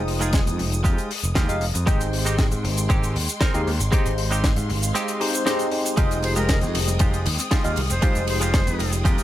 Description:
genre	nu-disco, nu disco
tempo	117 BPM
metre	4/4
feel	straight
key	F minor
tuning	A4 = 440 Hz
part	barky tine electric piano	accompaniment	0.0-9.2 s	Ab3 to G5	-27 LUFS	left 1 dB	overdrive, phaser, sidechain pumping, slapback echo
part	warm studio string section	sustained chords	0.0-9.2 s	Ab3 to Eb6	-34 LUFS	left 2 dB	sidechain pumping
part	modern bright picked electric bass	bass	0.0-9.2 s	F1 to Ab2	-24 LUFS	equal	sidechain pumping
part	tight funk drum kit	drums	0.1-9.2 s	hi-hat, ride cymbal, shaker, snare drum	-28 LUFS	left 1 dB	studio reverb
part	direct-recorded clean electric guitar	riff	0.2-9.2 s	Ab3 to Bb4	-29 LUFS	right 2 dB	analog chorus, slapback echo
part	electronic kick drum	drums	0.3-9.2 s	none	-21 LUFS	equal	overdrive, studio reverb
part	wide unison pluck	arpeggios	6.0-9.2 s	Eb3 to C4	-35 LUFS	left 1 dB	none
part	breathy bright jazz flute	melody	6.2-8.9 s	Bb4 to C5	-30 LUFS	equal	tape echo
room	little or no reverb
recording	none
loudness	-19 LUFS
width	side -13 dB against mid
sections	0.0-9.2 A section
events	none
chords	0.0 Fm9; 1.9 Abmaj7; 6.0 Fm9

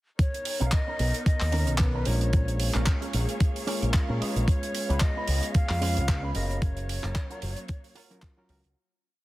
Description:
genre	nu-disco, nu disco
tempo	112 BPM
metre	4/4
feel	swing 56% on 16ths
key	unclear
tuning	A4 = 438 Hz
part	breathy mellow silver concert flute	melody	0.2-8.2 s	Cb5 to F5	-35 LUFS	equal	tape echo
part	dark symphonic string section	sustained chords	0.2-8.7 s	Gb3 to F5	-39 LUFS	left 1 dB	sidechain pumping
part	damped 70s drum kit	drums	0.2-8.7 s	handclaps, hi-hat	-34 LUFS	right 2 dB	none
part	electronic kick drum	drums	0.2-8.3 s	none	-24 LUFS	equal	none
part	electric guitar with an envelope filter	riff	0.6-8.8 s	Db4 to Ab5	-38 LUFS	right 3 dB	analog chorus, slapback echo
part	picked electric bass with an envelope filter	bass	0.6-8.7 s	Gb1 to Bb2	-27 LUFS	equal	none
part	overdriven reed electric piano	accompaniment	1.5-8.6 s	Eb3 to F5	-35 LUFS	left 1 dB	slapback echo
room	small room reverb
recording	dense, heavily limited modern master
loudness	-24 LUFS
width	side -18 dB against mid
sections	0.2-8.8 groove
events	clean electric guitar fill 3.4-4.5; fade-out 5.9-8.8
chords	0.2 Cbmaj9; 4.5 Db7; 6.6 Gbmaj7

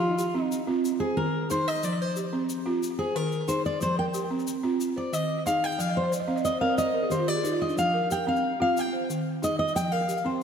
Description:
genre	west african traditional, West African string and xylophone music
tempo	121 BPM (dotted quarters)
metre	12/8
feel	straight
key	F dorian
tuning	A4 = 440 Hz
part	fingerpicked steel-string acoustic guitar	melody	0.0-10.4 s	F4 to G5	-27 LUFS	left 1 dB	tape echo
part	balafon	arpeggios	0.0-10.4 s	Eb3 to F5	-28 LUFS	right 2 dB	tape echo
part	tube shaker	percussion	0.2-10.2 s	none	-42 LUFS	left 7 dB	none
room	wet lush hall reverb, RT60 1.8 s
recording	dreamy mix soaked in reverb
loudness	-24 LUFS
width	side -7 dB against mid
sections	0.0-10.4 A section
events	steel-string acoustic guitar solo 0.0-10.4; balafon fill 5.8-7.8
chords	0.0 F5; 0.8 Eb5; 1.8 Fm; 2.8 Eb5; 3.8 Fm; 4.8 Ebsus2; 5.8 Fm; 6.8 N.C.; 7.8 F5; 8.8 Ebsus2; 9.8 Fm

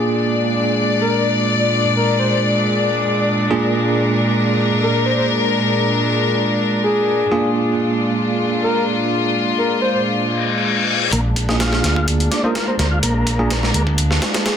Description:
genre	breakbeat, breaks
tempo	126 BPM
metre	4/4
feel	straight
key	unclear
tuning	A4 = 439 Hz
part	warm studio string section	sustained chords	0.0-14.6 s	Bb2 to D5	-18 LUFS	left 1 dB	sidechain pumping, low-pass filter
part	bell-like tine electric piano	stabs	0.0-13.5 s	Bb3 to C5	-22 LUFS	right 3 dB	fast stereo tremolo, vintage 12-bit sampler grit, ping-pong delay
part	breathy flute-like synth lead	melody	1.0-14.6 s	Ab4 to C5	-23 LUFS	left 2 dB	chorus, old record sound, ping-pong delay
part	reverse cymbal	sound effects	10.3-11.1 s	none	-19 LUFS	left 6 dB	none
part	tonewheel organ	riff	11.1-13.8 s	Bb3 to F4	-24 LUFS	equal	chorus vibrato, tube saturation, low-pass filter, ping-pong delay
part	overdriven fingered electric bass	bass	11.1-14.2 s	Bb1 to D2	-18 LUFS	equal	low-pass filter
part	breakbeat sampler-style drum kit	drums	11.1-14.6 s	hi-hat, kick drum, snare drum	-21 LUFS	equal	high-pass filter on kick, high-pass filter on hats, high-pass filter on snare, high-pass filter on room
room	moderate studio reverb, RT60 0.5 s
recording	dense, heavily limited modern master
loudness	-15 LUFS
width	side -8 dB against mid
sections	0.0-11.1 A section; 11.1-14.6 B section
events	reverse cymbal 10.3-11.1; build-up 11.1-14.6; filter sweep on string section 11.1-14.6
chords	0.0 Bb7

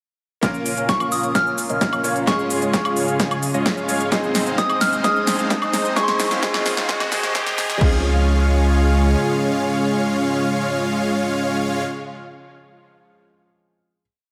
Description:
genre	EDM, festival progressive house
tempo	130 BPM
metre	4/4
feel	straight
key	Db major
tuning	A4 = 440 Hz
part	bright concert grand piano	accompaniment	0.4-14.0 s	F3 to Db5	-30 LUFS	equal	sidechain pumping, diffuse ambient delay
part	lush unison pad	sustained chords	0.4-11.8 s	Db3 to Ab4	-30 LUFS	equal	chorus, sidechain pumping
part	dense compressed supersaw	riff	0.4-11.8 s	Ab3 to Ab5	-25 LUFS	equal	sidechain pumping, low-pass filter, diffuse ambient delay
part	saturated sub bass	bass	0.4-9.2 s	Ab1 to Ab2	-23 LUFS	equal	sidechain pumping, high-pass filter
part	big-room dance drum kit	drums	0.4-7.9 s	crash cymbal, hi-hat, shaker, snare drum, woodblock	-26 LUFS	equal	overdrive
part	electronic kick drum	drums	0.4-7.9 s	none	-25 LUFS	equal	high-pass filter on kick, high-pass filter on room
part	riser	sound effects	3.9-7.8 s	none	-33 LUFS	equal	none
part	soft synth bell	melody	0.9-7.3 s	C6 to F6	-26 LUFS	equal	chorus, phaser, diffuse ambient delay
room	wet lush hall reverb, RT60 1.6 s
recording	dreamy mix soaked in reverb, high-pass filter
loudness	-20 LUFS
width	mono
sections	0.4-7.8 build; 7.8-11.5 final chord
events	build-up 0.4-7.8; drum fill 0.4-7.8; filter sweep on supersaw synth 0.4-7.8; filter sweep 0.4-7.8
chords	0.4 Bbm; 2.3 Db; 4.1 Ab; 6.0 Gb; 7.8 Db

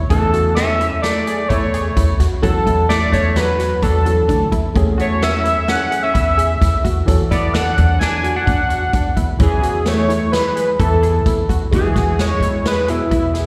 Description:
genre	progressive instrumental, band music in an uneven meter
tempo	129 BPM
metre	5/4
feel	straight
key	unclear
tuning	A4 = 439 Hz
part	dark grand piano	accompaniment	0.0-13.5 s	C#3 to C#5	-29 LUFS	equal	slapback echo
part	upright bass	bass	0.0-13.5 s	D2 to E2	-21 LUFS	equal	none
part	octave-doubled lead	melody	0.1-13.5 s	E4 to G#5	-21 LUFS	equal	chorus, slapback echo, digital delay
part	semi-hollow electric guitar	second line	0.1-13.5 s	B2 to D4	-26 LUFS	equal	slapback echo
part	swinging big-band drum kit	drums	0.1-13.5 s	hi-hat, kick drum, snare drum	-24 LUFS	equal	none
part	tight sequenced synth	arpeggios	0.3-13.5 s	D4 to G#4	-31 LUFS	equal	chorus, slapback echo, digital delay
room	light reverb, small room ambience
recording	live gig heard through the venue's PA, recital hall reverb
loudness	-16 LUFS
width	mono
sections	0.0-13.5 A section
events	none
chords	0.1 Amaj7/E; 2.4 Dmaj7/E; 4.8 Amaj7/E; 7.1 Dmaj7/E; 9.4 Amaj7/E; 11.7 Eadd9

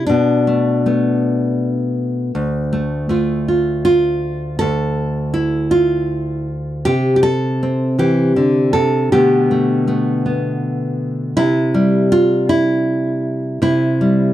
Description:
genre	folk, solo fingerstyle acoustic guitar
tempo	53 BPM (dotted quarters)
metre	6/8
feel	straight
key	D dorian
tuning	A4 = 440 Hz
part	nylon-string guitar	solo	0.0-14.3 s	D2 to A4	-14 LUFS	equal	none
room	light reverb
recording	dry, close 1970s-style studio recording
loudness	-14 LUFS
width	side -13 dB against mid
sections	0.0-14.3 A section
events	none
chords	0.1 Bm7; 2.3 Dm; 6.9 C; 9.1 Gadd9/B; 11.4 C

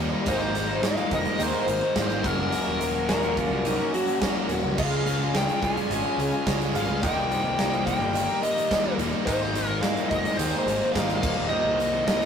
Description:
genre	classic rock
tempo	107 BPM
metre	4/4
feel	straight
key	unclear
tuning	A4 = 442 Hz
part	electric slide guitar	second line	0.0-4.2 s	Eb4 to Eb5	-32 LUFS	right 1 dB	digital delay
part	picked twelve-string acoustic guitar	accompaniment	0.0-12.3 s	Ab2 to Bb4	-34 LUFS	right 6 dB	none
part	crunchy overdriven guitar	riff	0.0-12.3 s	Eb2 to Ab4	-30 LUFS	left 7 dB	none
part	crunchy overdriven guitar	riff	0.0-12.3 s	Eb2 to Ab4	-36 LUFS	right 5 dB	phaser
part	tight distorted guitar	riff	0.0-12.3 s	Eb2 to Ab4	-33 LUFS	right 2 dB	distortion
part	fuzz picked electric bass	bass	0.0-12.3 s	Eb1 to Ab2	-31 LUFS	right 1 dB	overdrive
part	fuzz lead guitar	melody	0.3-12.3 s	Bb4 to Ab5	-28 LUFS	left 2 dB	wah, distortion
part	huge arena drum kit	drums	0.3-12.3 s	crash cymbal, hi-hat, kick drum, snare drum	-29 LUFS	right 1 dB	none
room	moderate small room reverb, RT60 0.5 s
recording	rough rehearsal-room recording, tube saturation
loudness	-22 LUFS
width	side -7 dB against mid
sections	0.0-12.3 A section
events	none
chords	0.3 Abadd9; 2.2 Gb; 4.8 Db; 7.0 Eb; 9.3 Abadd9; 11.2 Eb6

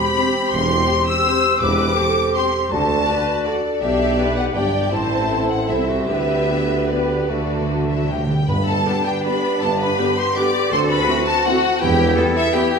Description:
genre	classical, orchestral ballroom waltz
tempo	140-178 BPM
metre	3/4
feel	rubato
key	G major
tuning	A4 = 440 Hz
part	rich studio violin section	melody	0.0-12.8 s	D5 to E6	-24 LUFS	left 4 dB	none
part	mellow hollow small flute group	second line	0.0-12.8 s	D5 to E6	-24 LUFS	right 1 dB	none
part	warm clarinet	second line	0.0-12.8 s	E4 to G4	-28 LUFS	left 3 dB	none
part	mellow bassoon	accompaniment	0.0-12.8 s	A3 to D4	-25 LUFS	left 1 dB	none
part	rich studio viola section	accompaniment	0.0-12.6 s	B3 to D5	-27 LUFS	right 3 dB	none
part	rich studio violin section	second line	0.2-12.8 s	E4 to D5	-28 LUFS	left 3 dB	none
part	dark French horn section	sustained chords	0.2-12.7 s	A3 to G4	-28 LUFS	left 3 dB	none
part	clear studio cello section	bass	0.5-12.8 s	D2 to A4	-27 LUFS	right 1 dB	none
part	clear tuba	bass	0.5-12.1 s	E1 to D2	-26 LUFS	right 2 dB	none
part	rich studio double bass section	bass	0.5-12.1 s	E1 to G2	-27 LUFS	right 2 dB	none
part	timpani	percussion	7.3-9.0 s	G2 to D3	-24 LUFS	right 1 dB	none
part	bright trombone section	sustained chords	8.9-12.7 s	D3 to A3	-29 LUFS	right 2 dB	none
room	wet recital hall reverb, RT60 1.7 s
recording	recorded in a church or concert hall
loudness	-16 LUFS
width	side -5 dB against mid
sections	0.0-8.5 A section; 8.5-12.8 B section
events	timpani fill 7.3-8.5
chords	0.0 C/E; 2.7 D; 3.8 G/B; 4.9 Am; 6.1 G/D; 7.3 D; 8.5 G; 10.7 D13; 11.8 Em

